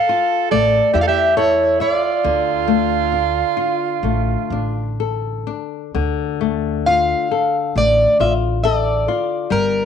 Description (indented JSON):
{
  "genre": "fado-style ballad",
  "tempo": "62-71 BPM",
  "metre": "4/4",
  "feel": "rubato",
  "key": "D minor",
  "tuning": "A4 = 441 Hz",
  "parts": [
    { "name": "fingerpicked plugged-in twelve-string acoustic guitar", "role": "melody", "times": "0.0-9.8 s", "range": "Bb4 to F5", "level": "-17 LUFS", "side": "equal", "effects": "none" },
    { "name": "mellow soprano saxophone", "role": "second line", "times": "0.0-5.0 s", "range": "E4 to A4", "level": "-20 LUFS", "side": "right 14 dB", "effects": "none" },
    { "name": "flamenco guitar", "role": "accompaniment", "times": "0.0-9.8 s", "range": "D3 to E5", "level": "-22 LUFS", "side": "left 14 dB", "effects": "none" },
    { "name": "upright bass", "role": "bass", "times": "0.5-9.8 s", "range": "G1 to E2", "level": "-23 LUFS", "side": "right 1 dB", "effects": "none" }
  ],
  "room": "moderate spring reverb, RT60 1.5 s, studio reverb",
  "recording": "1960s-style stereo with parts hard left and right",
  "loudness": "-15 LUFS",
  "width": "side -7 dB against mid",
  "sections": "0.0-5.9 A section; 5.9-9.8 A section",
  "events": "none",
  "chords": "0.0 G7sus2/A (rootless); 0.5 A5; 2.2 Dm"
}